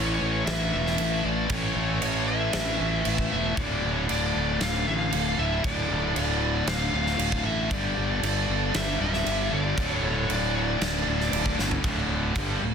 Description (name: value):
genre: hard rock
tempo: 116 BPM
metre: 4/4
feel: straight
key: unclear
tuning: A4 = 440 Hz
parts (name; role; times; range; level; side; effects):
- smooth overdriven lead guitar; melody; 0.0-11.6 s; C#5 to F5; -30 LUFS; left 2 dB; digital delay
- crunchy overdriven guitar; riff; 0.0-12.7 s; D2 to A3; -32 LUFS; left 1 dB; none
- tight distorted guitar; riff; 0.0-12.7 s; D2 to A3; -30 LUFS; left 1 dB; distortion
- fuzz fingered electric bass; bass; 0.0-12.7 s; D1 to A1; -30 LUFS; equal; overdrive
- big rock drum kit; drums; 0.5-12.5 s; crash cymbal, kick drum, snare drum, toms; -29 LUFS; right 2 dB; none
room: light reverb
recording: dense, heavily limited modern master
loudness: -23 LUFS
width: side -7 dB against mid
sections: 0.0-11.8 A section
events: drum fill 11.6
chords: 0.0 A; 3.6 Dm; 7.7 G5; 9.8 D5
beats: 0.47 0.99 | 1.51 2.02 2.54 3.06 | 3.58 4.09 4.61 5.13 | 5.64 6.16 6.68 7.19 | 7.71 8.22 8.74 9.26 | 9.77 10.29 10.81 11.32 | 11.84 12.36